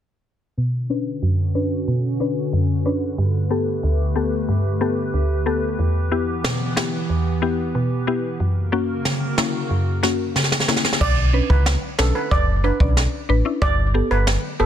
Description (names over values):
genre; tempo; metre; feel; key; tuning
dancehall; 92 BPM; 4/4; straight; B minor; A4 = 440 Hz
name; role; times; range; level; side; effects
mallet-like synth pluck; accompaniment; 0.6-14.7 s; D2 to D5; -21 LUFS; left 1 dB; chorus, sidechain pumping, low-pass filter
hollow soft pad; sustained chords; 1.0-11.0 s; C#3 to B4; -26 LUFS; equal; chorus, sidechain pumping, low-pass filter
jazz brush drum kit; drums; 6.4-14.4 s; crash cymbal, kick drum, rim click, snare drum; -21 LUFS; equal; none
steel pan; melody; 11.0-14.7 s; A4 to D5; -24 LUFS; right 4 dB; ping-pong delay
sub bass with octave; bass; 11.0-14.7 s; F#1 to C#2; -19 LUFS; equal; none
room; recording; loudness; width
small room ambience; dense, heavily limited modern master; -18 LUFS; side -10 dB against mid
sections
0.6-11.0 A section; 11.0-14.7 B section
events
filter sweep 0.6-11.0; drum fill 10.4-11.0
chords
0.6 Bmadd9; 3.2 Gadd9; 5.8 Em; 8.4 F#; 11.0 Bmadd9; 13.6 Gadd9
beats
| 0.57 1.23 1.88 2.53 | 3.18 3.83 4.49 5.14 | 5.79 6.44 7.10 7.75 | 8.40 9.05 9.70 10.36 | 11.01 11.66 12.31 12.96 | 13.62 14.27